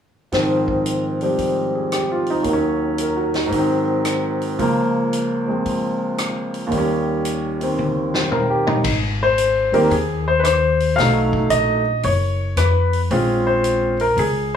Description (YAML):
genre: jazz piano trio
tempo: 113 BPM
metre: 4/4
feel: swing 66% on 8ths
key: Ab major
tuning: A4 = 440 Hz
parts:
  - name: clear baby grand piano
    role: melody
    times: 0.3-14.5 s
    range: Db2 to F5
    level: -18 LUFS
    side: equal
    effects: plate reverb
  - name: swinging big-band drum kit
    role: drums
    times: 0.3-14.3 s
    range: hi-hat, kick drum, ride cymbal, rim click, snare drum, toms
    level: -27 LUFS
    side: left 2 dB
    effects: none
  - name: upright bass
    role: bass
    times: 8.8-14.6 s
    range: F#1 to F2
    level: -21 LUFS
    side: left 1 dB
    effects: none
room: moderate studio reverb, RT60 0.6 s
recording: small room ambience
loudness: -17 LUFS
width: side -8 dB against mid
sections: 0.3-8.8 A section; 8.8-14.6 B section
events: drum fill 7.8-8.8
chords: 0.3 Ab6; 2.5 Ebm7; 3.5 Ab7; 4.6 Db6; 6.7 Eb7; 8.8 Ab; 11.0 B9; 13.1 Bbm7